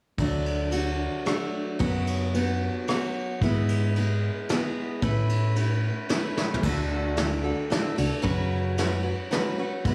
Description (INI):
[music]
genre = folk rock and heartland rock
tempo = 112 BPM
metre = 3/4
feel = straight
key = unclear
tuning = A4 = 438 Hz
[part]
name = picked steel-string acoustic guitar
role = accompaniment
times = 0.2-9.9 s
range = F#2 to B4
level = -30 LUFS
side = equal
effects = none
[part]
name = hollow-body short-scale picked electric bass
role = bass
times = 0.2-9.9 s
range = C#2 to A2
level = -29 LUFS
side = equal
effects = none
[part]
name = soft brush drum kit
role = drums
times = 0.2-9.9 s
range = crash cymbal, kick drum, ride cymbal, rim click, snare drum, toms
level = -33 LUFS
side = equal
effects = none
[sound]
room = light reverb, small room ambience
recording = studio reverb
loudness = -27 LUFS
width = mono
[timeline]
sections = 0.2-6.6 A section; 6.6-9.9 B section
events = drum fill 6.4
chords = 0.2 D; 1.8 F#sus4; 3.4 E/G#; 5.0 Aadd9; 6.6 D; 8.2 F#sus4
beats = | 0.19 0.73 1.27 | 1.81 2.34 2.88 | 3.42 3.96 4.49 | 5.03 5.57 6.10 | 6.64 7.18 7.71 | 8.25 8.79 9.32 | 9.86